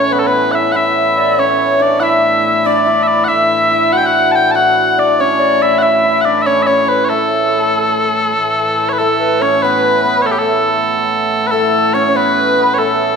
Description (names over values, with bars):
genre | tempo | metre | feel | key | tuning
medieval dance | 95 BPM (dotted quarters) | 6/8 | straight | A major | A4 = 440 Hz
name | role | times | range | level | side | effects
mellow small bagpipes | melody | 0.0-13.2 s | G4 to A5 | -14 LUFS | left 1 dB | none
hammered dulcimer | second line | 0.0-13.2 s | A3 to F#4 | -17 LUFS | right 4 dB | none
mellow tenor recorder | second line | 0.0-13.2 s | A4 to F#5 | -18 LUFS | left 4 dB | none
hand-pumped harmonium | drone | 0.0-13.2 s | A2 to E3 | -22 LUFS | left 2 dB | none
room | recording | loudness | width
wet recital hall reverb, RT60 1.6 s | none | -11 LUFS | side -6 dB against mid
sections
0.0-8.4 A section; 8.4-13.2 B section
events
none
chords
none